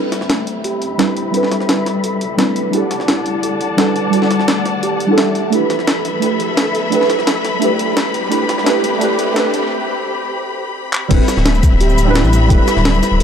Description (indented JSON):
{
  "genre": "liquid drum and bass",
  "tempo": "172 BPM",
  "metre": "4/4",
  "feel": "straight",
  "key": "unclear",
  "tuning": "A4 = 440 Hz",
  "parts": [
    { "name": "deep mellow chord stab", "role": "accompaniment", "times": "0.0-13.2 s", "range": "G3 to F#5", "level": "-18 LUFS", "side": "right 2 dB", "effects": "chorus, phaser, ping-pong delay" },
    { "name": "warm symphonic string section", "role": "sustained chords", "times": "0.0-13.2 s", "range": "G3 to B5", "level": "-20 LUFS", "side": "left 2 dB", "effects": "sidechain pumping, low-pass filter" },
    { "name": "kalimba", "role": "arpeggios", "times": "0.0-13.2 s", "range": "A3 to E5", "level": "-23 LUFS", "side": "left 1 dB", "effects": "low-pass filter, ping-pong delay" },
    { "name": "swelling detuned saw bass", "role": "bass", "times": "0.0-13.2 s", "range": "D1 to A2", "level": "-21 LUFS", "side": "equal", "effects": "high-pass filter" },
    { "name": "riser", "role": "sound effects", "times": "0.0-9.7 s", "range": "none", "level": "-30 LUFS", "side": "right 1 dB", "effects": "none" },
    { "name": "breakbeat sampler-style drum kit", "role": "drums", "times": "0.1-13.2 s", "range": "crash cymbal, handclaps, hi-hat, shaker, snare drum", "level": "-20 LUFS", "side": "equal", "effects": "high-pass filter on hats, high-pass filter on snare, high-pass filter on cymbals, high-pass filter on perc" },
    { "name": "electronic kick drum", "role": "drums", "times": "11.1-12.6 s", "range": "none", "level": "-12 LUFS", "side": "equal", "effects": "none" }
  ],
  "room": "moderate huge ambient reverb, RT60 4.1 s",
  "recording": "dark, warm production, high-pass filter",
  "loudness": "-13 LUFS",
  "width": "side -8 dB against mid",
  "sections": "0.0-11.1 A section; 11.1-13.2 B section",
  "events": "build-up 0.0-11.1; riser 0.0-9.7; filter sweep on synth stab 0.0-11.1; filter sweep on string section 0.0-11.1; filter sweep on kalimba 0.0-11.1; break 9.7-11.1; drum fill 10.9; drop 11.1-13.2",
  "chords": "0.0 D13sus4; 2.7 Em11; 5.5 G69; 8.1 Am9; 11.1 D13sus4"
}